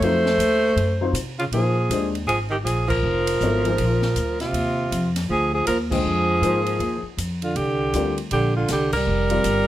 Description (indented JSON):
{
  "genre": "modal jazz",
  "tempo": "159 BPM",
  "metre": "4/4",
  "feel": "swing 63% on 8ths",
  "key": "Bb mixolydian",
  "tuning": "A4 = 441 Hz",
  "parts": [
    { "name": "breathy alto saxophone", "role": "melody", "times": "0.0-9.7 s", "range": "F4 to C5", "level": "-24 LUFS", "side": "equal", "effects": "none" },
    { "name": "clear tenor saxophone", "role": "second line", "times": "0.0-9.7 s", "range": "C3 to A3", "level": "-25 LUFS", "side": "right 2 dB", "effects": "none" },
    { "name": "dark baby grand piano", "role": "accompaniment", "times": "0.0-9.7 s", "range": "D3 to G5", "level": "-26 LUFS", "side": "left 4 dB", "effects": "none" },
    { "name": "upright bass", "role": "bass", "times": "0.0-9.7 s", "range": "F1 to C3", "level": "-25 LUFS", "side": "equal", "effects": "none" },
    { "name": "open jazz drum kit", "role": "drums", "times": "0.0-9.6 s", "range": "crash cymbal, hi-hat, kick drum, ride cymbal, snare drum", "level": "-32 LUFS", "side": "equal", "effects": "none" }
  ],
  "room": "moderate studio reverb, RT60 0.7 s",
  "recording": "none",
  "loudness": "-19 LUFS",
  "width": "side -13 dB against mid",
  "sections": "0.0-1.5 A section; 1.5-9.7 B section",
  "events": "band accent 2.8, 5.9, 8.9",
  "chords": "0.0 F7b9; 1.5 Bb9sus4; 7.6 C9sus4",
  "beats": "| 0.02 0.40 0.77 1.15 | 1.53 1.90 2.28 2.66 | 3.04 3.41 3.79 4.17 | 4.54 4.92 5.30 5.68 | 6.05 6.43 6.81 7.19 | 7.56 7.94 8.32 8.69 | 9.07 9.45"
}